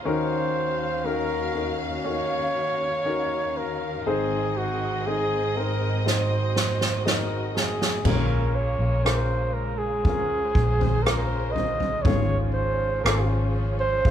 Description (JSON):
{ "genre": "pop ballad", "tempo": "60 BPM", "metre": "4/4", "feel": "straight", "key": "unclear", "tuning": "A4 = 441 Hz", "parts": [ { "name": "warm concert grand piano", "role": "accompaniment", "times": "0.0-14.1 s", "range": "Ab1 to Eb5", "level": "-30 LUFS", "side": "left 4 dB", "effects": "none" }, { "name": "mellow flugelhorn", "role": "melody", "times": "0.1-14.1 s", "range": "Gb4 to Eb5", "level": "-27 LUFS", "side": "right 1 dB", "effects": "none" }, { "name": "dark studio string section", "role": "sustained chords", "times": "0.1-14.1 s", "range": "Eb2 to F5", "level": "-31 LUFS", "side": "right 2 dB", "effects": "none" }, { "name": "unplugged drum kit", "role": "drums", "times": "6.1-14.1 s", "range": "crash cymbal, kick drum, rim click, snare drum, toms", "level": "-25 LUFS", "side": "equal", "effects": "none" }, { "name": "vintage muted fingered electric bass", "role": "bass", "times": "8.0-14.1 s", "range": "Ab1 to Bb1", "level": "-25 LUFS", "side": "equal", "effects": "none" } ], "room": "moderate large studio reverb, RT60 1.2 s", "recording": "band playing live in one room", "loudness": "-22 LUFS", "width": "side -10 dB against mid", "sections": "0.0-8.1 A section; 8.1-14.1 B section", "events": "drum fill 6.1-8.1", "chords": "0.1 Ebm7; 4.1 Ab; 8.1 Bbm7; 12.1 Dbmaj7/Ab" }